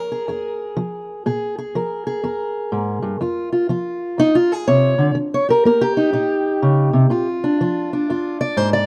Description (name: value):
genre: acoustic country blues, solo or duo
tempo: 123 BPM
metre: 4/4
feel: swing 64% on 8ths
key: Bb mixolydian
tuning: A4 = 440 Hz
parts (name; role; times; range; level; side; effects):
- fingerpicked steel-string acoustic guitar; solo; 0.0-8.9 s; F2 to D5; -19 LUFS; equal; none
room: small room ambience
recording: dry, close 1970s-style studio recording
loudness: -19 LUFS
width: mono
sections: 0.0-8.9 A section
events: steel-string acoustic guitar solo 0.0-8.9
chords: 0.0 Bb5; 3.2 F5; 5.2 Eb7; 7.1 Bb7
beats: 0.27 0.76 | 1.25 1.74 2.23 2.72 | 3.21 3.69 4.18 4.67 | 5.16 5.65 6.13 6.62 | 7.11 7.60 8.09 8.57